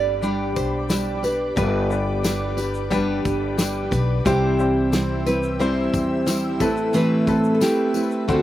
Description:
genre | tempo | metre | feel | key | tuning
acoustic pop | 89 BPM | 4/4 | straight | G major | A4 = 441 Hz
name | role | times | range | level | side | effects
nylon-string guitar | melody | 0.0-8.4 s | F#4 to D5 | -25 LUFS | equal | none
bright upright piano | accompaniment | 0.0-8.4 s | G3 to B5 | -29 LUFS | left 7 dB | none
picked steel-string acoustic guitar | accompaniment | 0.0-8.4 s | A2 to C5 | -22 LUFS | right 2 dB | none
ethereal airy pad | sustained chords | 0.0-8.4 s | C4 to E6 | -32 LUFS | left 2 dB | ensemble chorus, built-in reverb
upright bass | bass | 0.0-8.4 s | G1 to E2 | -26 LUFS | left 1 dB | none
loose indie drum kit | drums | 0.2-8.4 s | kick drum, shaker, snare drum | -28 LUFS | left 1 dB | none
tambourine | percussion | 0.6-8.1 s | none | -35 LUFS | left 9 dB | none
room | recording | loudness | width
little or no reverb | recorded outdoors, with no room sound | -19 LUFS | side -13 dB against mid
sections
0.0-8.4 A section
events
none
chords
0.0 G; 4.3 C; 6.6 Amadd9

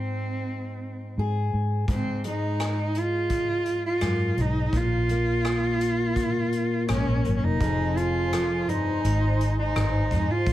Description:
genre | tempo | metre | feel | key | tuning
acoustic folk-pop ballad | 84 BPM | 4/4 | straight | unclear | A4 = 441 Hz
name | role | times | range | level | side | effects
dark cello | melody | 0.0-10.5 s | C4 to F4 | -27 LUFS | right 1 dB | none
fingerpicked steel-string acoustic guitar | accompaniment | 0.0-10.5 s | F2 to Ab4 | -29 LUFS | left 1 dB | none
vintage muted fingered electric bass | bass | 0.0-10.5 s | F1 to Ab2 | -27 LUFS | equal | none
vintage brush drum kit | drums | 1.9-10.5 s | hi-hat, kick drum, rim click | -32 LUFS | equal | none
hollow soft pad | sustained chords | 7.6-10.5 s | D4 to C6 | -35 LUFS | right 1 dB | ensemble chorus
room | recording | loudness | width
light reverb | none | -23 LUFS | side -14 dB against mid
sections
0.0-7.6 A section; 7.6-10.5 B section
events
none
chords
0.0 Ab; 1.9 Fm/Ab; 4.7 Bb5; 7.6 Fm; 9.0 Ab

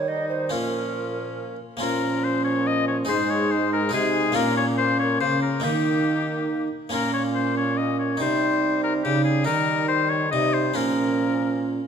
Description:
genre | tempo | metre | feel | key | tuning
classical, renaissance-style consort dance | 141 BPM | 3/4 | straight | Bb dorian | A4 = 438 Hz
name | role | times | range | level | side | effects
mellow hollow tenor recorder | second line | 0.0-11.8 s | Db4 to Eb5 | -26 LUFS | right 4 dB | none
harpsichord | accompaniment | 0.0-11.9 s | Ab2 to Ab4 | -28 LUFS | left 1 dB | none
warm bassoon | accompaniment | 0.0-11.8 s | F3 to Bb3 | -32 LUFS | left 3 dB | none
warm trombone | bass | 0.0-11.8 s | Ab2 to Eb3 | -30 LUFS | right 1 dB | none
clear oboe | melody | 0.1-11.8 s | Db4 to Eb5 | -25 LUFS | left 6 dB | none
room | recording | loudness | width
wet recital hall reverb, RT60 1.7 s | none | -20 LUFS | side -7 dB against mid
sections
0.0-1.8 A section; 1.8-11.9 A section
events
none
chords
0.0 Eb; 0.5 Bbm; 3.1 Ab; 4.4 Bbm; 5.6 Eb; 6.9 Bbm; 8.2 Cm; 9.5 Eb; 10.8 Bbm

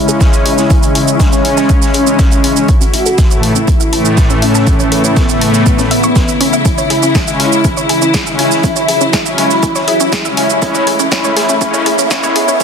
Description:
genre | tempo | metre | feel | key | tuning
melodic techno | 121 BPM | 4/4 | straight | C# minor | A4 = 440 Hz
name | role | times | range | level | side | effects
expressive synth lead | melody | 0.0-12.6 s | B3 to F#4 | -15 LUFS | equal | ensemble chorus, sidechain pumping, dub echo
rich studio string section | sustained chords | 0.0-12.6 s | C#3 to E4 | -19 LUFS | left 1 dB | sidechain pumping, low-pass filter
wide unison pluck | arpeggios | 0.0-12.6 s | C#4 to C#6 | -20 LUFS | equal | sidechain pumping, digital delay
brassy analog pad | stabs | 0.0-12.6 s | A2 to C#4 | -16 LUFS | left 1 dB | chorus, sidechain pumping, digital delay
punchy analog drum machine | drums | 0.1-12.6 s | hi-hat, shaker, snare drum | -18 LUFS | right 2 dB | overdrive
electronic kick drum | drums | 0.2-12.6 s | none | -13 LUFS | equal | overdrive
street-band drum kit | drums | 0.2-12.6 s | hi-hat, snare drum | -27 LUFS | equal | sidechain pumping on hats, high-pass filter on hats, high-pass filter on snare, high-pass filter on room
riser | sound effects | 8.3-12.6 s | none | -26 LUFS | equal | none
room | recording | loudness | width
moderate digital room reverb, RT60 1.0 s, small room ambience | dense, heavily limited modern master, high-pass filter | -9 LUFS | side -6 dB against mid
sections
0.0-12.6 A section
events
build-up 0.0-12.6; filter sweep on synth arpeggio sound 0.0-12.6; filter sweep on analog synth lead 0.0-12.6; filter sweep on string section 0.0-12.6; filter sweep 0.0-12.6; riser 8.3-12.6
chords
0.0 C#m; 2.7 A; 6.7 C#m; 10.6 A

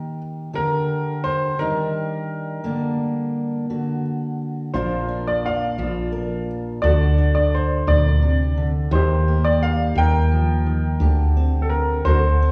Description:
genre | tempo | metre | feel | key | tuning
acoustic folk-pop ballad | 57 BPM (dotted quarters) | 6/8 | straight | unclear | A4 = 443 Hz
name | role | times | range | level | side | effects
clear upright piano | melody | 0.0-12.5 s | F4 to G5 | -26 LUFS | equal | none
fingerpicked steel-string acoustic guitar | accompaniment | 0.0-12.5 s | Bb2 to Bb4 | -27 LUFS | equal | none
woody fretless electric bass | bass | 4.7-12.5 s | Bb1 to Eb2 | -22 LUFS | equal | none
room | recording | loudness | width
wet recital hall reverb, RT60 1.4 s | recorded in a church or concert hall, small room ambience | -21 LUFS | mono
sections
0.0-4.7 A section; 4.7-12.5 B section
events
none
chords
0.0 Eb; 0.5 Bb6/D; 1.6 Ebmaj7; 2.6 Gm/D; 3.7 D; 4.7 Bb; 6.8 D; 8.9 Eb69; 11.0 D7sus4

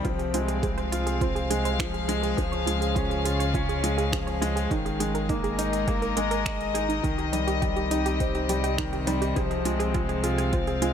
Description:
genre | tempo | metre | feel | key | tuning
piano and strings electronica | 103 BPM | 4/4 | straight | F minor | A4 = 440 Hz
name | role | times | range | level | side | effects
warm chamber string section | sustained chords | 0.0-10.9 s | C3 to F5 | -30 LUFS | left 2 dB | sidechain pumping
wide unison pluck | arpeggios | 0.0-10.9 s | Eb4 to Db5 | -32 LUFS | right 6 dB | sidechain pumping, tape echo
clear baby grand piano | riff | 0.0-10.9 s | Eb3 to Eb5 | -29 LUFS | left 2 dB | tape echo
warm sub bass | bass | 0.0-10.9 s | Ab1 to Db2 | -31 LUFS | right 1 dB | sidechain pumping
deep house drum kit | drums | 0.0-10.9 s | finger snaps, hi-hat | -35 LUFS | right 2 dB | overdrive
electronic kick drum | drums | 0.0-10.6 s | none | -30 LUFS | right 1 dB | overdrive
room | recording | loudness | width
light reverb, digital ambience | none | -24 LUFS | side -8 dB against mid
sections
0.0-10.9 A section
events
none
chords
0.0 Fm/C; 2.4 Db; 4.7 Absus2; 7.0 Cm; 9.4 Fm/C

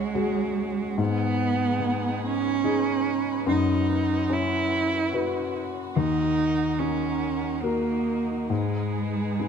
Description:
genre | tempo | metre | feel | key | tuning
neoclassical piano and strings | 72 BPM | 3/4 | rubato | G# minor | A4 = 440 Hz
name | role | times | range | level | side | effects
rich cello | second line | 0.0-9.5 s | G#3 to E4 | -26 LUFS | right 5 dB | none
felt-muted upright piano | accompaniment | 0.0-9.5 s | C#2 to B4 | -27 LUFS | left 5 dB | none
dark studio string section | sustained chords | 0.0-9.5 s | C#4 to C#5 | -36 LUFS | left 1 dB | none
room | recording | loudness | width
light reverb | dark, warm production | -23 LUFS | side -7 dB against mid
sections
0.0-9.5 A section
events
none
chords
0.0 C#sus4; 1.0 G#m; 3.5 F#7sus4; 6.0 D#m; 8.5 G#m

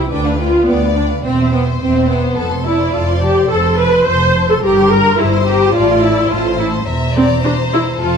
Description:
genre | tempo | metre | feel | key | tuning
quick classical-period movement for string orchestra | 107 BPM | 4/4 | straight | C major | A4 = 438 Hz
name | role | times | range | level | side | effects
clear studio violin section | melody | 0.0-8.2 s | A4 to E5 | -21 LUFS | left 6 dB | none
rich studio violin section | second line | 0.0-8.2 s | A4 to C6 | -26 LUFS | left 3 dB | none
warm studio viola section | accompaniment | 0.0-8.2 s | B3 to C5 | -14 LUFS | right 1 dB | none
dark studio double bass section | bass | 0.0-8.2 s | E1 to D2 | -20 LUFS | right 2 dB | none
warm studio cello section | bass | 0.0-8.2 s | D2 to A2 | -19 LUFS | equal | none
room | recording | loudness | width
moderate recital hall reverb, RT60 1.3 s | dark, warm production | -11 LUFS | side -6 dB against mid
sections
0.0-8.2 A section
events
none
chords
0.1 G7/D; 1.3 C/E; 2.4 F; 4.6 C5/G; 5.8 Amadd11; 6.9 C7/E

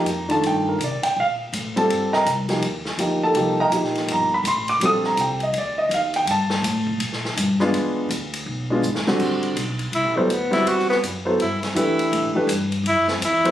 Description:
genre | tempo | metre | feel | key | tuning
modal jazz | 164 BPM | 4/4 | swing 63% on 8ths | A dorian from 9.2 s | A4 = 440 Hz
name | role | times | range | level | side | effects
dark upright piano | accompaniment | 0.0-13.5 s | D3 to Eb6 | -20 LUFS | equal | none
upright bass | bass | 0.0-13.5 s | G1 to C3 | -28 LUFS | left 1 dB | none
swinging big-band drum kit | drums | 0.1-13.5 s | crash cymbal, hi-hat, kick drum, ride cymbal, snare drum | -28 LUFS | left 1 dB | none
breathy tenor saxophone | second line | 10.0-13.5 s | G3 to F#4 | -20 LUFS | equal | none
room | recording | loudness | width
light reverb | recorded on a phone in the room, club reverb | -19 LUFS | side -12 dB against mid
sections
0.0-9.2 A section; 9.2-13.5 A section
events
drum fill 8.8-9.2; tenor saxophone solo 9.2-13.5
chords
0.0 Cm7; 3.4 Eb; 7.7 E7b9; 9.2 Am9

